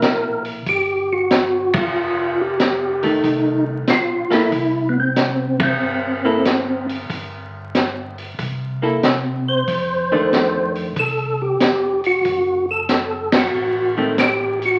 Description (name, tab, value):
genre	soul jazz organ trio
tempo	93 BPM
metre	4/4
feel	swing 67% on 8ths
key	unclear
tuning	A4 = 438 Hz
part	percussive tonewheel organ	melody	0.0-14.8 s	B3 to C5	-21 LUFS	equal	chorus vibrato, fast rotary speaker
part	archtop guitar, miked and amplified	accompaniment	0.0-14.2 s	Eb3 to A4	-24 LUFS	equal	none
part	mellow tonewheel organ	bass	0.0-14.8 s	F1 to C3	-32 LUFS	equal	chorus vibrato, slow rotary speaker
part	vintage drum kit	drums	0.0-14.7 s	hi-hat, kick drum, ride cymbal, snare drum	-23 LUFS	equal	none
room	moderate large studio reverb, RT60 1.2 s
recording	very old 78 rpm record, vinyl crackle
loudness	-19 LUFS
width	mono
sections	0.0-14.8 A section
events	band accent 1.6-2.0, 5.5-5.8, 13.2-13.5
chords	0.0 C7 (rootless); 2.0 F9; 4.5 C; 7.1 N.C.; 8.4 C6; 9.7 F13; 12.3 F#m